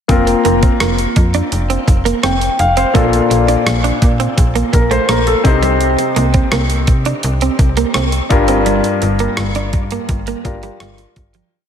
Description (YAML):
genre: 1980s-style pop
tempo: 84 BPM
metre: 4/4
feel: straight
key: unclear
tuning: A4 = 442 Hz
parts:
  - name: clear concert grand piano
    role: accompaniment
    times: 0.1-11.5 s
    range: G2 to G5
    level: -16 LUFS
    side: left 3 dB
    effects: slapback echo
  - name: slap-like FM bass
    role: bass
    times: 0.1-11.4 s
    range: F1 to C3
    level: -17 LUFS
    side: equal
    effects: none
  - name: clean 12-bit digital drum machine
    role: drums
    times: 0.1-11.5 s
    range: hi-hat, kick drum, rim click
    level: -16 LUFS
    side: equal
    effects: none
  - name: direct-recorded clean electric guitar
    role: riff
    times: 0.3-11.5 s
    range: F3 to D4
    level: -20 LUFS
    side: right 6 dB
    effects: wide subtle chorus, ping-pong delay, slapback echo
room: moderate lush hall reverb, RT60 1.8 s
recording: big arena sound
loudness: -11 LUFS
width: side -8 dB against mid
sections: 0.1-11.5 verse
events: fade-out 8.7-11.5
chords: 0.1 Fsus4; 3.0 Bbmaj7; 5.5 Cm; 8.3 Gm7